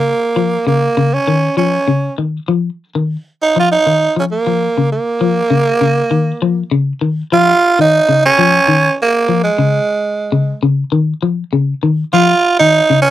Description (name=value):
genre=afrobeat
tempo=99 BPM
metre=4/4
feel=swing 54% on 16ths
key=unclear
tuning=A4 = 440 Hz
part: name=growling tenor saxophone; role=melody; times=0.0-13.1 s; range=Ab3 to F4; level=-12 LUFS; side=right 3 dB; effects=none
part: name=electric guitar at the edge of break-up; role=arpeggios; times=0.0-13.1 s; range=Db3 to F3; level=-14 LUFS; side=left 4 dB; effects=phaser
room=moderate booth ambience, RT60 0.3 s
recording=dry, close 1970s-style studio recording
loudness=-11 LUFS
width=side -13 dB against mid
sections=0.0-7.3 A section; 7.3-13.1 B section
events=none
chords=0.0 Db69